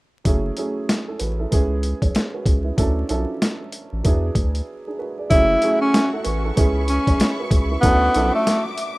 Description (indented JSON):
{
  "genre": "hip hop, boom-bap hip-hop",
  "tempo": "95 BPM",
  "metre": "4/4",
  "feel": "swing 61% on 16ths",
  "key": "F# minor",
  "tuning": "A4 = 441 Hz",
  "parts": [
    { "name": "dark upright piano", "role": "accompaniment", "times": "0.2-9.0 s", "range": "E#3 to D5", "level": "-25 LUFS", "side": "right 2 dB", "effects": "cassette tape" },
    { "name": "saturated sub bass", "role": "bass", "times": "0.3-8.3 s", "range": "F#1 to E2", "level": "-23 LUFS", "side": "equal", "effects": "none" },
    { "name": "boom bap sampler-style drum kit", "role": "drums", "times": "0.3-9.0 s", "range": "hi-hat, kick drum, snare drum", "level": "-20 LUFS", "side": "equal", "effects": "overdrive" },
    { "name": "breathy tenor saxophone", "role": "melody", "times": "5.3-8.6 s", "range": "A3 to E4", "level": "-19 LUFS", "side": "equal", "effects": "analog delay" },
    { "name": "warm symphonic string section", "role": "sustained chords", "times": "5.3-9.0 s", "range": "F#4 to D6", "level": "-31 LUFS", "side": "left 1 dB", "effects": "none" }
  ],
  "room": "small room ambience",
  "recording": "rough home demo mix, vinyl crackle",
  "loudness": "-17 LUFS",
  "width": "side -21 dB against mid",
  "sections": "0.3-5.3 A section; 5.3-9.0 B section",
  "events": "break 4.7-5.3",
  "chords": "0.3 F#m7; 1.5 C#m7; 2.8 Dmaj9; 4.0 E9; 5.3 F#m7; 6.6 C#m7; 7.8 Dmaj9"
}